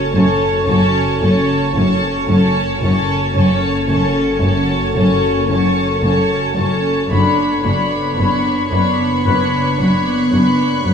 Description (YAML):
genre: cinematic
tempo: 56 BPM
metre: 4/4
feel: straight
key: F# minor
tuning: A4 = 441 Hz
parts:
  - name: warm studio violin section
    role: melody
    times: 0.0-10.9 s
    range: A5 to B5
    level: -22 LUFS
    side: left 3 dB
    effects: none
  - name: rich studio violin section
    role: second line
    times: 0.0-10.9 s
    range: C#5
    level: -23 LUFS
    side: right 2 dB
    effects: none
  - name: rich studio viola section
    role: accompaniment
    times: 0.0-10.9 s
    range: C#4 to D4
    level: -22 LUFS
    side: right 1 dB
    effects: none
  - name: glassy FM pad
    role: sustained chords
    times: 0.0-10.9 s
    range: B3 to C#5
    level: -21 LUFS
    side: left 1 dB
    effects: ensemble chorus, built-in reverb
  - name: organ-like drone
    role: drone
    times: 0.0-10.9 s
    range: F#1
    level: -23 LUFS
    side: left 1 dB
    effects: ensemble chorus, built-in reverb
  - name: concert harp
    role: texture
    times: 0.0-10.9 s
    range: C#4 to C#6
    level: -28 LUFS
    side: left 7 dB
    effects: none
  - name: warm studio cello section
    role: riff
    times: 0.1-10.9 s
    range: F#2 to F#3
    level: -22 LUFS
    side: left 1 dB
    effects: none
  - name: dark studio cello section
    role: bass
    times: 0.1-10.9 s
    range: F#2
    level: -20 LUFS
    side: equal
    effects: none
  - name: rich studio double bass section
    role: bass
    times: 0.1-10.9 s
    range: F#1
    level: -23 LUFS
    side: equal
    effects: none
  - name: clear studio violin section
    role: texture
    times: 7.1-10.9 s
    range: B5 to F#6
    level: -28 LUFS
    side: left 3 dB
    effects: none
room: moderate scoring stage reverb, RT60 2.1 s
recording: vinyl crackle, small room reverb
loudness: -13 LUFS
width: side -7 dB against mid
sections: 0.0-10.9 A section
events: none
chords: 0.0 F#m; 7.1 Bmadd9/F#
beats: 0.68 1.75 | 2.82 3.89 4.97 6.04 | 7.11 8.18 9.25 10.32